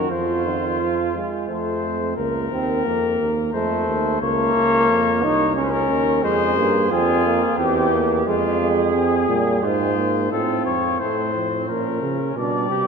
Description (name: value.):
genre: classical, imitative canzona for brass ensemble.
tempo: 88 BPM.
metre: 3/4.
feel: straight.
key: Bb minor.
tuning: A4 = 435 Hz.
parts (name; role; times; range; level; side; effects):
mellow trumpet; melody; 0.0-12.9 s; F4 to D5; -24 LUFS; left 6 dB; none.
mellow flugelhorn; second line; 0.0-2.2, 6.2-12.9 s; C4 to Ab4; -25 LUFS; right 4 dB; none.
warm trombone; accompaniment; 0.0-12.9 s; Eb3 to Eb4; -23 LUFS; right 1 dB; none.
mellow bass trombone; bass; 0.0-12.9 s; C2 to Db3; -24 LUFS; right 2 dB; none.
room: wet church reverb, RT60 3.4 s.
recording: none.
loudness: -18 LUFS.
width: side -5 dB against mid.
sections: 0.0-2.2 A section; 2.2-10.3 B section; 10.3-12.9 A section.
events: none.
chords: 0.1 F5; 1.5 F; 2.2 Bbm/Db; 3.5 F; 4.2 Bbm/Db; 6.2 Fm; 7.6 C/E; 8.3 Fm; 9.6 Fm/Ab; 10.3 F; 11.7 Bbm; 12.4 G/B.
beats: | 0.10 0.79 1.49 | 2.18 2.87 3.54 | 4.22 4.89 5.57 | 6.24 6.91 7.59 | 8.26 8.94 9.63 | 10.32 11.01 11.69 | 12.36.